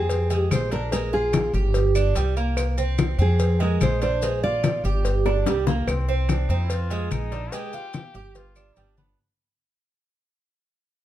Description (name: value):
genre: latin, Cuban son and guajira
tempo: 145 BPM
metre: 4/4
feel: straight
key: unclear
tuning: A4 = 439 Hz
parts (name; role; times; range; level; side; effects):
- nylon-string guitar; melody; 0.0-4.8 s; Ab4 to D5; -25 LUFS; equal; none
- Cuban tres; arpeggios; 0.0-9.2 s; G3 to G4; -28 LUFS; right 6 dB; none
- upright bass; bass; 0.0-9.1 s; G1 to F2; -23 LUFS; equal; none
- congas; percussion; 0.1-9.2 s; none; -28 LUFS; left 4 dB; none
- cowbell and bongos; percussion; 0.1-9.0 s; none; -32 LUFS; left 5 dB; none
- maracas; percussion; 0.1-9.2 s; none; -40 LUFS; left 6 dB; none
- claves; percussion; 0.5-8.8 s; none; -39 LUFS; right 4 dB; none
- warm trumpet; second line; 5.9-9.2 s; C4 to G4; -38 LUFS; left 5 dB; none
room: light reverb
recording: dark, warm production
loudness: -20 LUFS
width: side -13 dB against mid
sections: 0.0-5.9 A section; 5.9-9.2 B section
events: drum fill 5.3-5.9; fade-out 5.9-9.2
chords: 0.1 Fm; 0.9 Bb5; 1.8 G5; 2.6 Fmadd11/C; 3.4 Fm; 4.2 Bb7; 5.1 G5; 5.9 Csus2; 6.7 Fm7; 7.5 Fmadd9; 8.4 G7